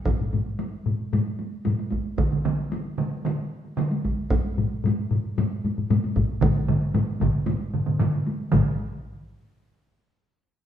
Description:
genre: japanese traditional, taiko drum ensemble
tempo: 114 BPM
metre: 4/4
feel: straight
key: none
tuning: none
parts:
  - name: solo taiko drums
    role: percussion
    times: 0.1-9.0 s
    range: none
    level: -26 LUFS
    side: left 3 dB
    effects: none
  - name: solo taiko drums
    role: percussion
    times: 0.1-8.8 s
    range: none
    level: -28 LUFS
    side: right 1 dB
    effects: none
  - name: taiko ensemble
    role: percussion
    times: 0.1-8.8 s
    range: none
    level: -29 LUFS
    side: equal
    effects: none
  - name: taiko ensemble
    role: percussion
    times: 2.2-9.0 s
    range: none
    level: -25 LUFS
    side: right 3 dB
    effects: none
room: wet large studio reverb, RT60 1.3 s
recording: band playing live in one room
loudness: -23 LUFS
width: side -10 dB against mid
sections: 0.0-8.5 A section; 8.5-10.6 B section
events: none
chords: none

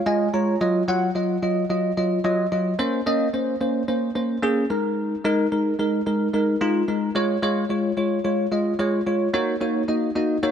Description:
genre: pop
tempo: 110 BPM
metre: 4/4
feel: straight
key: Eb dorian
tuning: A4 = 439 Hz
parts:
  - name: bell-like tine electric piano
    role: solo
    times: 0.0-10.5 s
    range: Gb3 to Bb5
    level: -20 LUFS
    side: equal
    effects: lush chorus
room: light reverb, digital ambience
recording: none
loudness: -20 LUFS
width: side -8 dB against mid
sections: 0.0-9.3 A section; 9.3-10.5 B section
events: tine electric piano fill 0.0-0.6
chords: 0.0 Db; 0.6 Ebmadd9; 2.8 Bbmadd9; 4.7 Absus2; 7.2 Db; 9.3 Ebm7

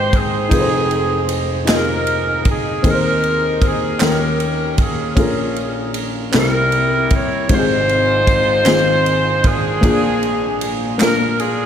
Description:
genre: slow gospel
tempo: 52 BPM (dotted quarters)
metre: 6/8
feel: straight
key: unclear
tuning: A4 = 440 Hz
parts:
  - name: clear saxophone section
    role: melody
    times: 0.0-11.7 s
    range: C4 to Db5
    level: -18 LUFS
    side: right 1 dB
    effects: analog delay
  - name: dark upright piano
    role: accompaniment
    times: 0.0-11.7 s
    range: F1 to G5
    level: -18 LUFS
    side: left 2 dB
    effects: none
  - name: natural country drum kit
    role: drums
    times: 0.1-11.6 s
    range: kick drum, ride cymbal, snare drum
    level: -20 LUFS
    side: equal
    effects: none
  - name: group handclap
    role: percussion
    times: 1.7-11.4 s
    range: none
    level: -28 LUFS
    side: right 4 dB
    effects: none
room: moderate cathedral reverb, RT60 5.1 s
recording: dreamy mix soaked in reverb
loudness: -14 LUFS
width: side -8 dB against mid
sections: 0.0-11.7 A section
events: none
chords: 0.0 Abmaj7; 0.5 Fm7; 2.8 Ab/Eb; 4.0 Eb7; 5.2 Bbm7; 6.3 C7; 7.5 Fm7/Ab; 9.8 Bb7

